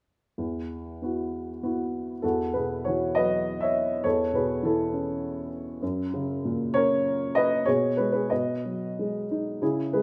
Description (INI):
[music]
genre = classical, lyrical solo piano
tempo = 90-103 BPM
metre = 3/4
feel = rubato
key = E major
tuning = A4 = 440 Hz
[part]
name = dark upright piano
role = solo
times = 0.4-10.0 s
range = E2 to E5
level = -27 LUFS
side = equal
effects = none
[sound]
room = moderate recital hall reverb, RT60 1.6 s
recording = none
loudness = -27 LUFS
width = mono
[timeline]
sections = 0.4-2.2 A section; 2.2-10.0 B section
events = none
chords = 0.4 Esus2; 4.0 Aadd9/E; 5.8 F#; 7.7 G#madd11/B; 8.3 B6